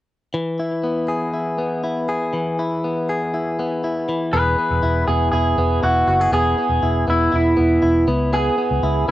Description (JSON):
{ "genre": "indie pop", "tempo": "120 BPM", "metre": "4/4", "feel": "straight", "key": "unclear", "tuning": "A4 = 440 Hz", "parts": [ { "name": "direct-recorded clean electric guitar", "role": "arpeggios", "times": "0.3-9.1 s", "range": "E3 to G#4", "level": "-21 LUFS", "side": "left 2 dB", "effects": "cassette tape" }, { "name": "electric guitar through a small old amp", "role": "melody", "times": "4.3-9.1 s", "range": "E4 to B4", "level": "-18 LUFS", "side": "right 1 dB", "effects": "cassette tape" }, { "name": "vintage muted fingered electric bass", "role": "bass", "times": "4.3-9.1 s", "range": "E1 to C#2", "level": "-21 LUFS", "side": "equal", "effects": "none" } ], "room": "wet booth ambience, RT60 0.2 s", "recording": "home recording on cassette", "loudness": "-17 LUFS", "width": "side -15 dB against mid", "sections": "0.3-4.3 A section; 4.3-9.1 B section", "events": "none", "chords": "0.3 E; 4.1 N.C.; 4.3 E; 8.1 C#m7" }